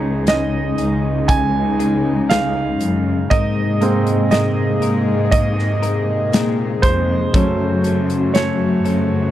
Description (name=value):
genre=pop ballad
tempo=60 BPM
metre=4/4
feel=straight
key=unclear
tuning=A4 = 439 Hz
part: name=clear grand piano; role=accompaniment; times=0.0-9.3 s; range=Gb3 to Ab5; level=-20 LUFS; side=right 4 dB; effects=none
part: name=airy breathy pad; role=sustained chords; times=0.0-9.3 s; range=C3 to Ab4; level=-22 LUFS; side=left 1 dB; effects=chorus
part: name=direct-recorded clean electric guitar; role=arpeggios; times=0.0-9.3 s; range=Gb2 to Bb4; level=-26 LUFS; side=left 9 dB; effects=none
part: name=warm studio cello section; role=bass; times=0.0-9.3 s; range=Db2 to Bb2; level=-20 LUFS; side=left 1 dB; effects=none
part: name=modern studio drum kit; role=drums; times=0.3-9.1 s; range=hi-hat, kick drum, snare drum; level=-18 LUFS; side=equal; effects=none
room=studio ambience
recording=dry, close 1970s-style studio recording, lossy compression artefacts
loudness=-15 LUFS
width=side -12 dB against mid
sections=0.0-9.3 A section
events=grand piano solo 0.0-9.3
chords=0.0 Dbsus2; 3.3 Abadd9; 7.3 Gbm